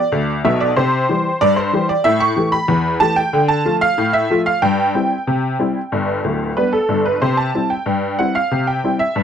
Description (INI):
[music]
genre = ragtime piano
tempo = 93 BPM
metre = 2/4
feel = straight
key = C major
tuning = A4 = 440 Hz
[part]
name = honky-tonk upright piano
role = solo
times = 0.0-9.2 s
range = D1 to Db6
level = -15 LUFS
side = equal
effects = none
[sound]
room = light reverb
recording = dry, close 1970s-style studio recording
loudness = -15 LUFS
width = side -8 dB against mid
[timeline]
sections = 0.0-9.2 A section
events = none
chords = 0.0 G (rootless); 0.8 C; 2.0 A5; 3.3 Dm; 4.6 C/G; 5.9 G; 7.2 C